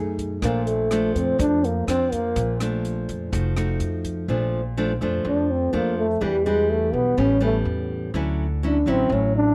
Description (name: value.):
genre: bossa nova.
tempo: 124 BPM.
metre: 4/4.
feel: straight.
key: Bb major.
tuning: A4 = 440 Hz.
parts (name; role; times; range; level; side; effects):
nylon-string guitar; accompaniment; 0.0-9.5 s; F2 to G#4; -28 LUFS; equal; none.
upright bass; bass; 0.0-9.5 s; F1 to F#2; -29 LUFS; equal; none.
compact cocktail drum kit; drums; 0.2-4.2 s; hi-hat, kick drum, rim click; -33 LUFS; equal; none.
breathy trombone; melody; 0.4-9.5 s; G3 to D4; -24 LUFS; equal; slapback echo.
room: small room ambience.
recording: dry, close 1970s-style studio recording.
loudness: -23 LUFS.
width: mono.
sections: 0.0-4.3 A section; 4.3-9.5 B section.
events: trombone solo 4.3-9.5.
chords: 0.4 Bbmaj7; 3.3 F7b9; 4.3 Bbmaj7; 6.2 Em9; 7.2 A9; 8.1 Dmaj9.